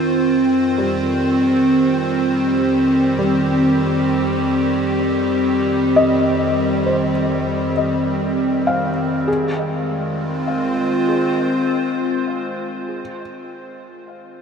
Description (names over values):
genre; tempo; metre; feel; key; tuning
ambient; 50 BPM; 4/4; straight; F minor; A4 = 440 Hz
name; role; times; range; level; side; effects
evolving wavetable pad; sustained chords; 0.0-13.7 s; F2 to C5; -17 LUFS; equal; chorus, built-in reverb, shimmer reverb
felt-muted upright piano; arpeggios; 0.8-14.4 s; G3 to F5; -24 LUFS; left 2 dB; ping-pong delay, shimmer reverb
room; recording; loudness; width
wet huge ambient reverb, RT60 6.9 s; in a vast, echoing space; -16 LUFS; side -6 dB against mid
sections
0.0-9.3 A section; 9.3-14.1 B section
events
none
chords
0.0 Cm/F; 9.3 Fm7